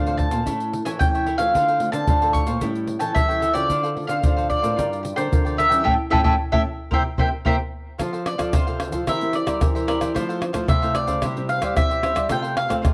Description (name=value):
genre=samba and choro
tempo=111 BPM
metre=4/4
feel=straight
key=D minor, F major from 8.0 s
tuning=A4 = 440 Hz
part: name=mandolin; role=melody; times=0.0-12.7 s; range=C5 to C#6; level=-25 LUFS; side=equal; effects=cassette tape, plate reverb
part: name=cavaquinho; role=accompaniment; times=0.0-12.9 s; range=D4 to G5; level=-34 LUFS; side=equal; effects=cassette tape, plate reverb
part: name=nylon-string guitar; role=accompaniment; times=0.0-12.9 s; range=A2 to Bb4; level=-33 LUFS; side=equal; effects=cassette tape, plate reverb
part: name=nylon-string guitar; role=bass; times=0.0-12.9 s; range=G2 to C4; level=-30 LUFS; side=equal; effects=none
part: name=tube shaker, pandeiro, surdo and tamborim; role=percussion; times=0.1-12.9 s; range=none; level=-26 LUFS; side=equal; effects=none
room=moderate studio reverb, RT60 0.5 s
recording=home recording on cassette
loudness=-21 LUFS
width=mono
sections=0.0-8.0 A section; 8.0-12.9 B section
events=band accent 5.9-8.0; drum fill 7.3-8.0; mandolin solo 8.0-12.9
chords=0.5 A; 1.5 Dm7; 2.6 A7; 3.7 Dm7; 4.8 Gm7; 5.9 A7; 6.9 C7; 8.0 F; 9.1 C7/E; 10.2 Fmaj7; 11.2 C; 12.3 F/C